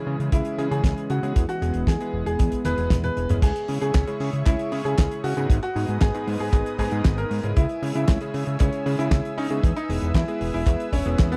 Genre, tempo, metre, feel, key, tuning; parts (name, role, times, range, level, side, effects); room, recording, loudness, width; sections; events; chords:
italo disco; 116 BPM; 4/4; straight; C# minor; A4 = 442 Hz
warm analog pad; sustained chords; 0.0-11.4 s; E3 to E6; -36 LUFS; equal; chorus
warm electric grand piano; stabs; 0.0-11.4 s; G#2 to G#4; -34 LUFS; equal
fat analog bass; bass; 0.1-11.4 s; E1 to C#3; -29 LUFS; equal
damped 70s drum kit; drums; 0.2-11.4 s; crash cymbal, handclaps, hi-hat, snare drum, toms; -30 LUFS; equal; studio reverb
clear grand piano; melody; 0.3-11.4 s; B3 to B4; -31 LUFS; equal; tape echo
kick drum; drums; 0.3-11.3 s; -23 LUFS; equal; studio reverb
little or no reverb; dry, close 1970s-style studio recording; -23 LUFS; mono
0.0-3.4 A section; 3.4-11.4 B section
drum fill 2.7-3.4
0.0 C#m; 1.4 E; 3.4 C#m; 5.5 G#m; 7.6 C#m; 9.6 E